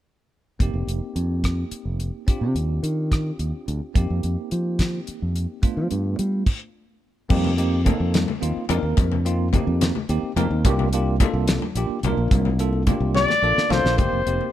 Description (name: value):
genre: electric jazz fusion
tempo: 72 BPM (dotted quarters)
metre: 6/8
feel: straight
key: F mixolydian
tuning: A4 = 439 Hz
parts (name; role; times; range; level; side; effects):
- bell-like tine electric piano; accompaniment; 0.6-14.5 s; A3 to F5; -28 LUFS; right 2 dB; medium stereo tremolo
- fingered electric bass; bass; 0.6-14.4 s; F1 to G3; -23 LUFS; equal; none
- damped 70s drum kit; drums; 0.6-14.4 s; crash cymbal, hi-hat, kick drum, rim click, snare drum; -22 LUFS; equal; none
- congas; percussion; 7.3-14.5 s; none; -28 LUFS; left 9 dB; none
- mellow trumpet; melody; 13.2-14.5 s; C5 to D5; -20 LUFS; left 3 dB; slapback echo
room: little or no reverb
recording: none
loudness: -20 LUFS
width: side -12 dB against mid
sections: 0.6-7.3 A section; 7.3-14.0 B section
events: stop 6.5-7.3; drum fill 13.2-14.0; tine electric piano fill 13.2-14.0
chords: 0.6 F9sus4; 2.3 Ebmaj13; 4.0 F9sus4; 5.6 G9; 7.3 F9sus4; 10.6 C9sus4; 14.0 F9sus4